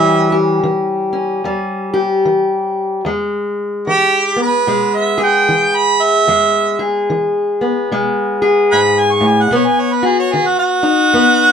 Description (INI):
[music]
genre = acoustic country blues, solo or duo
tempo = 74 BPM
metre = 4/4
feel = swing 61% on 8ths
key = unclear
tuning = A4 = 435 Hz
[part]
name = warm harmonica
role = melody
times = 0.0-11.5 s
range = F#4 to C#6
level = -13 LUFS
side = right 3 dB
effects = none
[part]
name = fingerpicked steel-string acoustic guitar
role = accompaniment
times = 0.0-11.5 s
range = E2 to G#4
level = -14 LUFS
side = left 2 dB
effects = none
[sound]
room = moderate studio reverb, RT60 0.6 s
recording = band playing live in one room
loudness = -12 LUFS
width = side -7 dB against mid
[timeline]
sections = 0.0-11.5 A section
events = harmonica solo 0.0-11.5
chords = 0.0 A#dim7; 3.1 E; 9.5 B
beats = 0.65 1.45 2.26 | 3.07 3.87 4.68 5.49 | 6.30 7.10 7.91 8.72 | 9.53 10.33 11.14